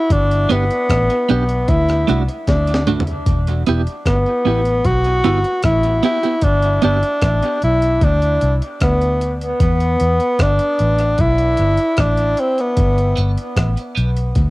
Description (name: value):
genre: dub reggae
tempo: 76 BPM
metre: 4/4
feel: straight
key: E minor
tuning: A4 = 439 Hz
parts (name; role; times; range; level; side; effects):
- clear tenor saxophone; melody; 0.0-13.4 s; B3 to F#4; -18 LUFS; equal; cassette tape, dub echo, plate reverb
- vintage muted fingered electric bass; bass; 0.1-14.5 s; E1 to E2; -17 LUFS; equal; none
- breakbeat sampler-style drum kit; drums; 0.1-14.5 s; hi-hat, kick drum, rim click, snare drum, toms; -20 LUFS; equal; cassette tape
- clean electric guitar; accompaniment; 0.5-7.0, 13.2-14.1 s; A3 to G4; -23 LUFS; right 4 dB; tremolo, high-pass filter, cassette tape, dub echo, plate reverb
room: moderate booth ambience, RT60 0.2 s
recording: home recording on cassette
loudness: -14 LUFS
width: side -19 dB against mid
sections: 0.0-14.5 A section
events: drum fill 2.5-3.3; filter sweep on clean electric guitar 6.4-14.5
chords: 0.1 G; 1.7 D; 3.3 Em; 6.4 G; 8.0 Bm; 9.6 Em; 12.8 G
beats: | 0.10 0.89 1.68 2.47 | 3.27 4.06 4.85 5.64 | 6.43 7.22 8.02 8.81 | 9.60 10.39 11.19 11.98 | 12.77 13.57 14.36